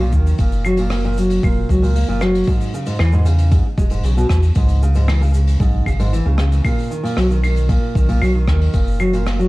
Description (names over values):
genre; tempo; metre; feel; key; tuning
folktronica; 115 BPM; 4/4; straight; B major; A4 = 440 Hz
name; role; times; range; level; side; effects
nylon-string guitar; arpeggios; 0.0-9.5 s; G#2 to A#3; -20 LUFS; equal; digital delay
warm sub bass; bass; 0.0-9.5 s; E1 to E2; -16 LUFS; equal; none
electronic kick drum; drums; 0.1-8.8 s; none; -18 LUFS; equal; none
jazz brush drum kit; drums; 0.1-9.5 s; claves, hi-hat, rim click, shaker; -29 LUFS; equal; none
room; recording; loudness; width
light reverb, small room reverb; dark, warm production, vinyl crackle; -14 LUFS; side -20 dB against mid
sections
0.0-9.5 A section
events
none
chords
0.4 F#; 2.5 E6; 4.6 C#5; 6.7 Bmaj7; 8.7 F#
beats
| 0.39 0.91 1.44 1.96 | 2.48 3.00 3.52 4.04 | 4.57 5.09 5.61 6.13 | 6.65 7.17 7.70 8.22 | 8.74 9.26